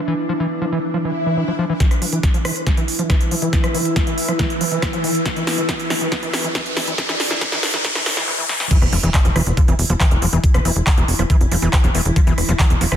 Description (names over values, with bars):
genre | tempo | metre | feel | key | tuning
psychedelic trance | 139 BPM | 4/4 | straight | unclear | A4 = 440 Hz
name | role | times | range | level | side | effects
swarming drone | sustained chords | 0.0-13.0 s | E3 to E4 | -27 LUFS | equal | built-in reverb, sidechain pumping
deep dark ambient pad | texture | 0.0-8.3 s | E4 to E6 | -27 LUFS | equal | chorus, built-in reverb, sidechain pumping
overdriven acid bass | riff | 0.1-13.0 s | E3 to F3 | -24 LUFS | moving between left 5 dB and right 5 dB | distortion, auto-pan, vintage 12-bit sampler grit, sidechain pumping, dub echo
swell, riser and impact | sound effects | 1.1-10.4 s | none | -26 LUFS | left 1 dB | none
big-room dance drum kit | drums | 1.8-13.0 s | crash cymbal, handclaps, hi-hat, rim click, snare drum | -22 LUFS | right 1 dB | overdrive
electronic kick drum | drums | 1.8-12.7 s | none | -16 LUFS | equal | overdrive
tight sequencer bass | bass | 8.8-13.0 s | E1 to F1 | -19 LUFS | equal | tube saturation
room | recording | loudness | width
light reverb, digital ambience | dense, heavily limited modern master, high-pass filter, low-pass filter | -16 LUFS | side -10 dB against mid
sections
0.0-1.8 A section; 1.8-8.7 B section; 8.7-13.0 C section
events
filter sweep on acid bass 0.0-1.8, 1.8-8.7; swell 1.1-1.8; build-up 1.8-8.7; drum fill 1.8-8.3, 8.5; riser 1.8-8.7; filter sweep on synth drone 1.8-8.7; filter sweep 1.8-8.7; drop 8.7-13.0; impact 8.7-10.4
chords
0.0 E5